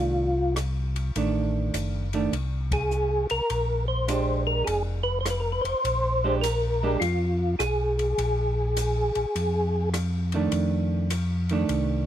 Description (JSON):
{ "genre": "soul jazz organ trio", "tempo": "102 BPM", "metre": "4/4", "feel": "swing 66% on 8ths", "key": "unclear", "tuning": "A4 = 442 Hz", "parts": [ { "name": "percussive tonewheel organ", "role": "melody", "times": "0.0-9.9 s", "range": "F4 to C5", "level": "-26 LUFS", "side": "equal", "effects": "slow rotary speaker, chorus vibrato" }, { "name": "vintage hollow-body jazz guitar", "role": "accompaniment", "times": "0.0-12.1 s", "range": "Eb3 to G4", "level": "-28 LUFS", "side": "right 5 dB", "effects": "none" }, { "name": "mellow tonewheel organ", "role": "bass", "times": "0.0-12.1 s", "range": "F1 to F2", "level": "-27 LUFS", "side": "left 1 dB", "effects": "chorus vibrato, slow rotary speaker" }, { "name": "open jazz drum kit", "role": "drums", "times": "0.6-11.9 s", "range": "hi-hat, kick drum, ride cymbal, rim click", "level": "-36 LUFS", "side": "left 1 dB", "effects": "none" } ], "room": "small room reverb", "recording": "dry, close 1970s-style studio recording", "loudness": "-23 LUFS", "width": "side -11 dB against mid", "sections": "0.0-12.1 A section", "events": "band accent 2.6", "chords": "0.0 F13; 3.5 Bb13; 10.5 F6" }